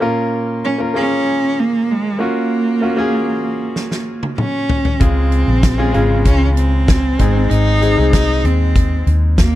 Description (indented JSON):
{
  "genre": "piano-driven pop",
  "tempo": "96 BPM",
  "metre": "4/4",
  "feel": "straight",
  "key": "Db major",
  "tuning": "A4 = 438 Hz",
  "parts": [
    { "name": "clear concert grand piano", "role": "accompaniment", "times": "0.0-9.6 s", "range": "Ab2 to Bb4", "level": "-20 LUFS", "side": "left 2 dB", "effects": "none" },
    { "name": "rich cello", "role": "melody", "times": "0.6-9.6 s", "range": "Ab3 to Eb4", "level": "-18 LUFS", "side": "right 2 dB", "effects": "none" },
    { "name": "huge arena drum kit", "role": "drums", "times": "3.8-9.5 s", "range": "hi-hat, kick drum, snare drum, toms", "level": "-16 LUFS", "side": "equal", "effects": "none" },
    { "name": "vintage muted fingered electric bass", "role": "bass", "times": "5.0-9.6 s", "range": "Ab1 to Eb2", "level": "-15 LUFS", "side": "equal", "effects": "none" }
  ],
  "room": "little or no reverb",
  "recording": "dry, close 1970s-style studio recording",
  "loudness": "-13 LUFS",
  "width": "side -14 dB against mid",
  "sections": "0.0-9.6 A section",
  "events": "drum fill 3.8-5.0",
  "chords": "0.0 Bbm; 2.2 Gbmaj7; 5.0 Db; 7.2 Ab"
}